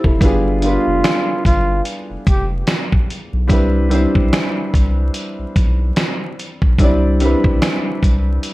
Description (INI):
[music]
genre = lo-fi hip hop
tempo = 73 BPM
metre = 4/4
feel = swing 57% on 16ths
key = C major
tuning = A4 = 437 Hz
[part]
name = felt-muted upright piano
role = accompaniment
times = 0.0-8.5 s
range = G3 to D5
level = -20 LUFS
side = equal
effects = cassette tape
[part]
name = dusty soul sampler-style drum kit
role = drums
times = 0.0-8.5 s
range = finger snaps, hi-hat, kick drum, snare drum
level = -16 LUFS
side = equal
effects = none
[part]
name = saturated sub bass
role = bass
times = 0.1-8.4 s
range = F1 to C2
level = -18 LUFS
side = equal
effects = none
[part]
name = breathy flugelhorn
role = melody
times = 0.6-2.5 s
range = F4 to G4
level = -20 LUFS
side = right 1 dB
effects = none
[sound]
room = light reverb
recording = vinyl crackle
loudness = -14 LUFS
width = side -18 dB against mid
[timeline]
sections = 0.0-8.5 A section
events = none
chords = 0.2 G7b9; 3.5 Cmaj9